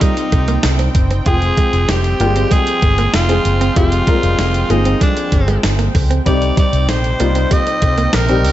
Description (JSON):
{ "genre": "1980s-style pop", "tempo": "96 BPM", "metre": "4/4", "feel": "straight", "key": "unclear", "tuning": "A4 = 438 Hz", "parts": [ { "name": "raspy alto saxophone", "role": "melody", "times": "0.0-8.5 s", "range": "D4 to Eb5", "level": "-19 LUFS", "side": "equal", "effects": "ping-pong delay" }, { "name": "warm baby grand piano", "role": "accompaniment", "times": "0.0-8.5 s", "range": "C3 to G5", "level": "-21 LUFS", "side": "left 4 dB", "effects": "none" }, { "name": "brassy analog pad", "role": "sustained chords", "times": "0.0-8.5 s", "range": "C3 to G5", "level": "-25 LUFS", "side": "right 1 dB", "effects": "chorus" }, { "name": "direct-recorded clean electric guitar", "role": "riff", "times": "0.0-8.5 s", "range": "G3 to F4", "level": "-24 LUFS", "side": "right 5 dB", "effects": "lush chorus, ping-pong delay" }, { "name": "clean 12-bit digital drum machine", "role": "drums", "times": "0.0-8.5 s", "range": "hi-hat, kick drum, snare drum", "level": "-17 LUFS", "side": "equal", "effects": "gated reverb" }, { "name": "cowbell", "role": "percussion", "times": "0.0-8.3 s", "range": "none", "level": "-32 LUFS", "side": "right 7 dB", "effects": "none" }, { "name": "vintage muted fingered electric bass", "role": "bass", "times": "0.3-8.5 s", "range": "F1 to Db2", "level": "-16 LUFS", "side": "equal", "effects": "none" } ], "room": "light reverb, digital ambience", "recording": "nothing above 7.9 kHz", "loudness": "-12 LUFS", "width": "side -13 dB against mid", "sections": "0.0-8.5 A section", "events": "none", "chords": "0.0 Cm; 1.3 Fmadd9; 6.3 Cm" }